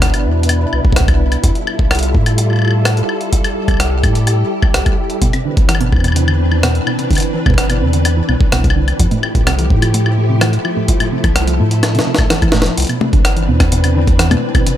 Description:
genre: IDM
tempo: 127 BPM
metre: 4/4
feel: straight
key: C major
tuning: A4 = 438 Hz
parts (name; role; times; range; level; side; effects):
- soft string machine; sustained chords; 0.0-14.8 s; B2 to B4; -20 LUFS; left 1 dB; ensemble chorus
- warm sub bass; bass; 0.0-14.4 s; F1 to A2; -15 LUFS; equal; none
- electronic kick drum; drums; 0.0-14.6 s; none; -14 LUFS; equal; none
- jungle sampler-style drum kit; drums; 0.0-14.8 s; hi-hat, rim click, snare drum, toms, woodblock; -19 LUFS; left 2 dB; digital delay
- thumb-piano-like synth pluck; arpeggios; 5.2-14.7 s; A2 to F3; -20 LUFS; right 2 dB; chorus, vintage 12-bit sampler grit, ping-pong delay
room: digital ambience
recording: none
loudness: -11 LUFS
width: side -11 dB against mid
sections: 0.0-12.8 A section; 12.8-14.8 B section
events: drum fill 11.8-12.8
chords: 0.0 Cmaj9; 1.4 Fmaj9; 5.2 Cmaj9; 9.0 Fmaj9; 12.8 Cmaj9

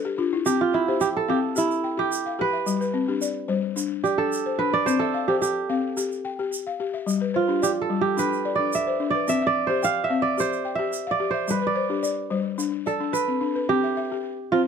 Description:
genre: west african traditional, West African string and xylophone music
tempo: 109 BPM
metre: 4/4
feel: straight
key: C major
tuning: A4 = 440 Hz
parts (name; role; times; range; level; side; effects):
- balafon; arpeggios; 0.0-14.7 s; G3 to G5; -26 LUFS; left 7 dB; slapback echo
- kora; melody; 0.5-14.7 s; E4 to F5; -24 LUFS; right 6 dB; none
- tube shaker; percussion; 0.5-13.3 s; none; -34 LUFS; right 4 dB; none
room: light reverb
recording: close, detailed microphones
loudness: -22 LUFS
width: side -6 dB against mid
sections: 0.0-13.7 A section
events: balafon fill 0.0-0.5; kora solo 0.0-13.7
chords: 0.5 C; 2.7 G; 4.9 C; 7.1 G; 9.3 C; 11.5 G; 13.7 C

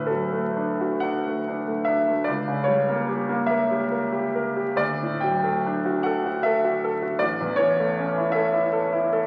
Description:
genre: classical, romantic nocturne for solo piano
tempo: 42-54 BPM (dotted quarters)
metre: 12/8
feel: rubato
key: D major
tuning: A4 = 445 Hz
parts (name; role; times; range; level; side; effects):
- bright concert grand piano; solo; 0.0-9.3 s; A1 to G5; -24 LUFS; equal; none
room: wet recital hall reverb, RT60 1.5 s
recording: very old 78 rpm record, vinyl crackle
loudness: -24 LUFS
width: mono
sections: 0.0-9.3 A section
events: none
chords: 0.0 D; 2.3 C#dim7; 4.8 D; 7.2 A

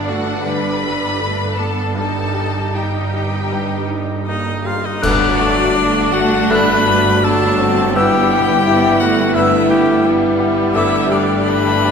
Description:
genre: cinematic, emotional film score for orchestra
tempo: 76-87 BPM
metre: 4/4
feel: rubato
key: unclear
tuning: A4 = 441 Hz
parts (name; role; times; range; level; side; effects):
- warm symphonic violin section; melody; 0.0-11.9 s; D4 to B5; -27 LUFS; left 3 dB; none
- clear studio violin section; second line; 0.0-11.9 s; A3 to B4; -24 LUFS; right 1 dB; none
- bright baby grand piano; accompaniment; 0.0-11.9 s; G2 to A4; -22 LUFS; left 1 dB; none
- clear symphonic viola section; accompaniment; 0.0-11.9 s; E3 to Eb4; -23 LUFS; right 1 dB; none
- concert harp; arpeggios; 0.0-11.9 s; G2 to G5; -26 LUFS; left 6 dB; none
- clear symphonic cello section; bass; 0.0-11.9 s; G2; -26 LUFS; right 3 dB; none
- warm symphonic double bass section; bass; 0.0-11.9 s; G1; -25 LUFS; right 3 dB; none
- cymbal swell, clash cymbals and concert bass drum; percussion; 2.0-6.5 s; none; -27 LUFS; right 1 dB; none
- rich violin; melody; 4.3-11.9 s; D5 to B5; -20 LUFS; left 6 dB; none
- clear oboe; second line; 4.3-11.9 s; D4 to B4; -21 LUFS; right 1 dB; none
- bright concert flute; second line; 5.0-11.1 s; D6 to F#6; -23 LUFS; left 3 dB; none
- mellow clarinet; second line; 5.0-11.0 s; A4 to B4; -25 LUFS; left 1 dB; none
- mellow French horn section; sustained chords; 5.0-11.9 s; A3 to F#4; -19 LUFS; right 1 dB; none
room: wet concert hall reverb, RT60 1.9 s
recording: minimal, uncompressed stereo recording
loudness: -13 LUFS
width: side -6 dB against mid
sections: 0.0-5.0 A section; 5.0-11.9 B section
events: band accent 5.0-5.7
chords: 0.0 Gadd9; 2.0 Eb/G; 5.0 D/G; 8.0 Em/G; 10.8 Gadd9

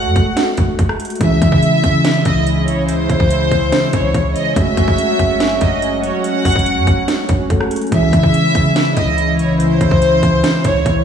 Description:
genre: hip hop, trap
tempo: 143 BPM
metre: 4/4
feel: half-time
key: C# harmonic minor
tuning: A4 = 440 Hz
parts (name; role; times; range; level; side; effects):
- warm studio violin section; second line; 0.0-11.0 s; B#4 to F#5; -18 LUFS; equal; tape echo
- warm analog pad; sustained chords; 0.0-11.0 s; C#3 to F#4; -19 LUFS; left 1 dB; chorus
- clean 808-style bass; bass; 0.0-11.0 s; F#1 to C#3; -20 LUFS; equal; none
- trap drum kit; drums; 0.2-11.0 s; hi-hat, kick drum, rim click, snare drum; -18 LUFS; equal; overdrive, vintage 12-bit sampler grit
- mellow tine electric piano; accompaniment; 1.2-11.0 s; E3 to A4; -20 LUFS; equal; medium stereo tremolo, low-pass filter
room: moderate lush hall reverb, RT60 1.7 s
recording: dreamy mix soaked in reverb, small room ambience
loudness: -12 LUFS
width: side -8 dB against mid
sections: 0.0-11.0 A section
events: none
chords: 0.0 F#madd9; 1.2 C#m; 4.6 F#madd9; 7.9 C#m

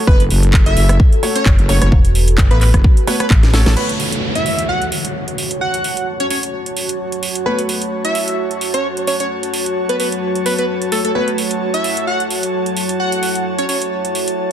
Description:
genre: bass house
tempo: 130 BPM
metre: 4/4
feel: swing 55% on 16ths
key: F# minor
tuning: A4 = 441 Hz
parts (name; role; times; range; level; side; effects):
- deep dark ambient pad; sustained chords; 0.0-14.5 s; F#3 to E5; -26 LUFS; left 1 dB; chorus, built-in reverb, sidechain pumping
- plucky unison lead; melody; 0.1-13.8 s; A4 to F#5; -21 LUFS; right 1 dB; digital delay
- wobble bass; bass; 0.1-3.8 s; F#1 to A1; -13 LUFS; equal; chorus, overdrive, sidechain pumping
- electronic kick drum; drums; 0.1-3.4 s; none; -11 LUFS; equal; none
- house drum kit; drums; 0.2-14.4 s; crash cymbal, handclaps, hi-hat, rim click, snare drum; -22 LUFS; right 2 dB; none
- dark baby grand piano; stabs; 1.2-14.5 s; A3 to C#5; -26 LUFS; right 3 dB; sidechain pumping, digital delay
- metallic FM bass; bass; 1.5-3.6 s; E1 to A1; -13 LUFS; equal; overdrive, sidechain pumping
- downlifter; sound effects; 3.8-7.5 s; none; -24 LUFS; left 1 dB; none
- airy breathy pad; texture; 3.8-14.5 s; F#4 to A5; -22 LUFS; equal; chorus, sidechain pumping
room: light reverb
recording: dense, heavily limited modern master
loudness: -14 LUFS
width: side -10 dB against mid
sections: 0.0-3.8 A section; 3.8-14.5 B section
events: drop 0.0-3.8; drum fill 3.4-3.8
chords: 0.0 F#m

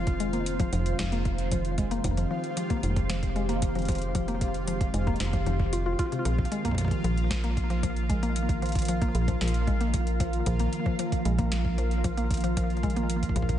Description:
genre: IDM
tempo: 114 BPM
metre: 4/4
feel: straight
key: F minor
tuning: A4 = 437 Hz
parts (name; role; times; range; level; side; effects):
- glassy FM pad; sustained chords; 0.0-13.6 s; Eb3 to C5; -32 LUFS; equal; ensemble chorus, built-in reverb, sidechain pumping
- mallet-like synth pluck; arpeggios; 0.0-13.5 s; C3 to F4; -33 LUFS; left 2 dB; chorus, tape echo
- metallic FM bass; bass; 0.0-13.6 s; F1 to Bb1; -29 LUFS; equal; none
- bubbling stepped-filter texture; texture; 0.0-13.6 s; F4 to F5; -38 LUFS; right 1 dB; chorus, built-in reverb
- booming analog drum machine; drums; 0.1-13.6 s; hi-hat, snare drum; -38 LUFS; equal; tape echo
- electronic kick drum; drums; 0.1-13.6 s; none; -29 LUFS; equal; none
room: light reverb, digital ambience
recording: echo-heavy mix, nothing above 10.4 kHz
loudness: -25 LUFS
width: side -11 dB against mid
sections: 0.0-13.6 A section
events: none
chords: 0.0 Fm7; 6.3 F7(no3)

